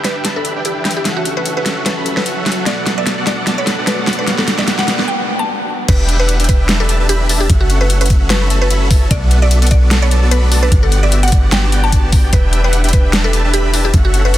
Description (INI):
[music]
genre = future bass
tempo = 149 BPM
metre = 4/4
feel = swing 55% on 16ths, half-time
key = unclear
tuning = A4 = 441 Hz
[part]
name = mallet-like synth pluck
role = melody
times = 0.0-14.4 s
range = F#4 to A5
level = -21 LUFS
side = equal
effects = chorus, sidechain pumping, tape echo
[part]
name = shimmering ambient pad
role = sustained chords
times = 0.5-5.1 s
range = E3 to B4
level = -29 LUFS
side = equal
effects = none
[part]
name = concert harp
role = arpeggios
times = 0.0-14.4 s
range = A3 to F#5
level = -29 LUFS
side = left 2 dB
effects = sidechain pumping, low-pass filter, digital delay
[part]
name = dense compressed supersaw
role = riff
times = 0.0-14.4 s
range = B3 to B5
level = -20 LUFS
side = right 1 dB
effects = cassette tape, sidechain pumping, low-pass filter
[part]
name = dubstep drum kit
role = drums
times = 0.0-14.4 s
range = crash cymbal, hi-hat, snare drum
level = -18 LUFS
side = left 1 dB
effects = studio ambience
[part]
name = riser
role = sound effects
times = 2.4-5.1 s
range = none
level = -27 LUFS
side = right 2 dB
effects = none
[part]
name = warm 808-style bass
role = bass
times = 5.9-14.4 s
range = E1 to B1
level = -14 LUFS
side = equal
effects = sidechain pumping
[part]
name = electronic kick drum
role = drums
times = 5.9-14.0 s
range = none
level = -12 LUFS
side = equal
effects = studio ambience
[sound]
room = light reverb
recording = dense, heavily limited modern master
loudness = -11 LUFS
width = side -14 dB against mid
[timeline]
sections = 0.0-5.9 A section; 5.9-14.4 B section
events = build-up 0.0-5.9; drum fill 0.0-5.1; break 5.1-5.9; drop 5.9-14.4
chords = 0.0 Em7; 1.1 F#m7; 2.7 Bm7; 4.3 Gmaj7; 5.9 Em7; 7.5 F#m7; 9.1 Bm7; 10.7 Gmaj7; 12.3 Em7